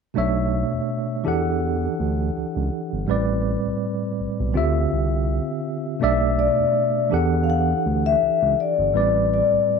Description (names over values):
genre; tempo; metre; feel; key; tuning
R&B; 82 BPM; 4/4; swing 54% on 16ths; B phrygian; A4 = 440 Hz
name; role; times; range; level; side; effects
tine electric piano; accompaniment; 0.1-9.8 s; A2 to F#5; -22 LUFS; right 2 dB; fast stereo tremolo
smooth synth bass; bass; 0.2-9.6 s; G1 to E2; -24 LUFS; right 1 dB; none
vibraphone with soft mallets; melody; 6.4-9.8 s; D5 to F#5; -20 LUFS; left 8 dB; slapback echo
room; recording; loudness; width
moderate spring reverb, RT60 1.3 s, small room ambience; none; -19 LUFS; side -5 dB against mid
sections
0.2-6.0 A section; 6.0-9.8 B section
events
none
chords
0.2 Bm11; 1.2 Em11; 3.1 Am11; 4.5 Dm11; 6.0 Bm7; 7.1 Em11; 8.9 Am11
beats
| 0.15 0.88 1.61 2.35 | 3.08 3.81 4.54 5.27 | 6.00 6.74 7.47 8.20 | 8.93 9.66